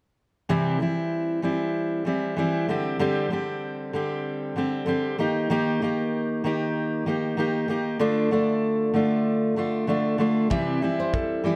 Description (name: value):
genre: acoustic pop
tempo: 96 BPM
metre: 4/4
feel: swing 55% on 16ths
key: C major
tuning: A4 = 445 Hz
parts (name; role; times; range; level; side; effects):
- fingerpicked steel-string acoustic guitar; accompaniment; 0.5-11.6 s; C3 to G4; -25 LUFS; equal; none
- nylon-string guitar; arpeggios; 10.5-11.6 s; G4 to E5; -34 LUFS; equal; none
- kick drum; drums; 10.5-11.3 s; none; -29 LUFS; equal; none
room: light reverb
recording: none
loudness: -25 LUFS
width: mono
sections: 0.5-11.6 A section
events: none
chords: 0.5 C; 2.7 Gsus4/D; 5.2 Eb; 8.0 Dm; 10.5 C